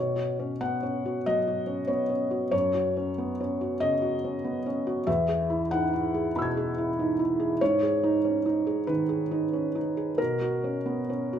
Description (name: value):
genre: neoclassical minimalist piano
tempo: 93 BPM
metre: 4/4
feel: rubato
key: unclear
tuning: A4 = 442 Hz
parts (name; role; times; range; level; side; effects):
- felt-muted upright piano; solo; 0.0-11.4 s; E2 to G#6; -25 LUFS; equal; none
room: moderate large studio reverb, RT60 1.1 s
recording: band playing live in one room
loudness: -25 LUFS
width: side -9 dB against mid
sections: 0.0-11.4 A section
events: none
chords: 0.0 Bsus2; 2.5 F#5; 5.1 Eadd9; 7.6 G#m; 10.2 Bsus2